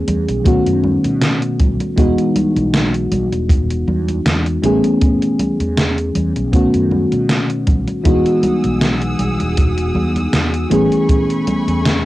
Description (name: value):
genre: vaporwave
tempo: 79 BPM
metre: 4/4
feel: swing 54% on 16ths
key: E major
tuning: A4 = 435 Hz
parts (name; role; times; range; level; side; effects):
- mellow FM electric piano; accompaniment; 0.0-12.1 s; D#3 to G#4; -16 LUFS; equal; analog chorus, cassette tape, analog delay
- fretless electric bass; bass; 0.0-12.1 s; E1 to B2; -21 LUFS; equal; analog chorus
- gated 80s digital drum machine; drums; 0.1-12.0 s; congas, hi-hat, snare drum; -20 LUFS; equal; gated reverb, gated reverb snare, overdrive, vintage 12-bit sampler grit
- kick drum; drums; 0.5-11.3 s; none; -16 LUFS; equal; vintage 12-bit sampler grit
- rich symphonic string section; sustained chords; 8.1-12.1 s; A3 to E6; -26 LUFS; equal; cassette tape
room: light reverb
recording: home recording on cassette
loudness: -13 LUFS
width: side -16 dB against mid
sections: 0.0-12.1 A section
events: none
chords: 0.5 B9; 2.0 Emaj9; 4.6 Amaj9; 6.5 B9; 8.1 Emaj9; 10.7 Amaj9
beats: 0.46 1.22 | 1.98 2.74 3.50 4.26 | 5.02 5.78 6.54 7.29 | 8.05 8.81 9.57 10.33 | 11.09 11.85